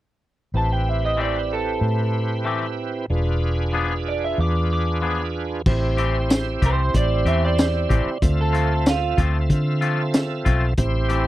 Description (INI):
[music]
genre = straight-eighth soul blues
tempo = 94 BPM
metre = 4/4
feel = straight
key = A minor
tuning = A4 = 440 Hz
[part]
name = bright tonewheel organ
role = accompaniment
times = 0.5-11.3 s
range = C4 to E5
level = -26 LUFS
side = right 3 dB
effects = slow rotary speaker, overdrive, chorus vibrato
[part]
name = vintage muted fingered electric bass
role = bass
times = 0.5-11.3 s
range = E1 to D3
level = -22 LUFS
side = equal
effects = none
[part]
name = electric guitar through a small old amp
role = melody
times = 0.6-9.2 s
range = F4 to D6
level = -25 LUFS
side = right 3 dB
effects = none
[part]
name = twangy electric guitar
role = stabs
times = 1.2-11.3 s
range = E3 to G#4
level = -25 LUFS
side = left 6 dB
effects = none
[part]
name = crunchy breakbeat drum kit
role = drums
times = 5.7-11.2 s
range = crash cymbal, hi-hat, kick drum, snare drum, tambourine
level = -21 LUFS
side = equal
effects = none
[sound]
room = little or no reverb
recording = dry, close 1970s-style studio recording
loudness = -19 LUFS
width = side -15 dB against mid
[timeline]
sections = 0.5-5.7 A section; 5.7-11.3 B section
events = none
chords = 0.5 Am7; 3.1 E7b9; 5.7 Am7; 8.2 Dm7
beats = | 0.54 1.18 1.82 2.46 | 3.10 3.74 4.38 5.02 | 5.66 6.30 6.94 7.58 | 8.22 8.86 9.49 10.13 | 10.77